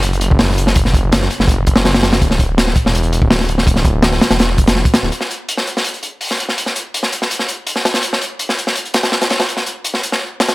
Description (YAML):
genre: drum and bass, jungle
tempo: 165 BPM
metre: 4/4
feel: straight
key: unclear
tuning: A4 = 440 Hz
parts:
  - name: detuned saw bass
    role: bass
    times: 0.0-5.1 s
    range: D1 to F#1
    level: -16 LUFS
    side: equal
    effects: none
  - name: crunchy breakbeat drum kit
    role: drums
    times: 0.0-10.5 s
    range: hi-hat, kick drum, snare drum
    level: -14 LUFS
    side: equal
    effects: high-pass filter on kick, high-pass filter on hats, high-pass filter on snare, high-pass filter on room
room: little or no reverb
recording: none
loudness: -13 LUFS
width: side -20 dB against mid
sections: 0.0-5.1 A section; 5.1-10.5 B section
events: drop 0.0-5.1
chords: none